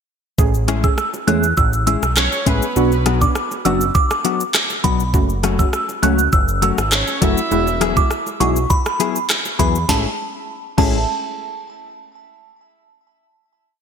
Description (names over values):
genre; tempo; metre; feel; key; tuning
dancehall; 101 BPM; 4/4; straight; A major; A4 = 441 Hz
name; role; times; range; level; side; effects
deep mellow chord stab; accompaniment; 0.4-11.0 s; G#3 to G#4; -23 LUFS; right 3 dB; chorus, sidechain pumping
fat analog bass; bass; 0.4-11.1 s; E1 to E2; -20 LUFS; equal; none
afro-pop drum kit; drums; 0.4-10.9 s; crash cymbal, handclaps, hi-hat, kick drum, rim click, shaker, snare drum; -19 LUFS; equal; gated reverb
bongos; percussion; 0.4-11.1 s; none; -34 LUFS; right 4 dB; none
mellow electric guitar; arpeggios; 0.7-11.0 s; F#3 to G#4; -23 LUFS; left 10 dB; analog chorus
glassy synth bell; melody; 0.8-11.1 s; A5 to F#6; -22 LUFS; right 3 dB; chorus, digital delay
mellow horn section; second line; 2.2-3.0, 6.9-11.1 s; B3 to E5; -26 LUFS; right 2 dB; digital delay
room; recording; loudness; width
light reverb; bright 1980s-style digital production; -15 LUFS; side -7 dB against mid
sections
0.4-9.9 chorus; 9.9-12.3 final chord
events
none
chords
0.4 Amaj7; 2.8 Bm; 5.1 F#m; 7.5 Eadd9; 9.9 Amaj7